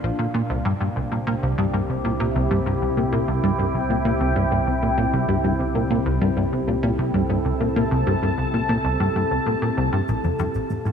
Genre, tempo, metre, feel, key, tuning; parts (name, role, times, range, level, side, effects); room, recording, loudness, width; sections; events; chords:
ambient, sequencer-driven space music; 97 BPM; 4/4; straight; A4 = 440 Hz
evolving wavetable pad; sustained chords; 0.0-10.9 s; Bb2 to A5; -24 LUFS; equal; chorus, built-in reverb, phaser
plucky analog bass; riff; 0.0-10.9 s; Bb1 to Bb2; -22 LUFS; equal; wide subtle chorus, ping-pong delay
fat analog bass; bass; 0.0-10.9 s; Bb1 to C2; -30 LUFS; equal
cabasa and claves; percussion; 10.1-10.9 s; -53 LUFS; left 4 dB; overdrive, ping-pong delay
wet lush hall reverb, RT60 2.7 s; -20 LUFS; side -7 dB against mid
0.0-10.1 A section
0.2 C; 10.1 Bb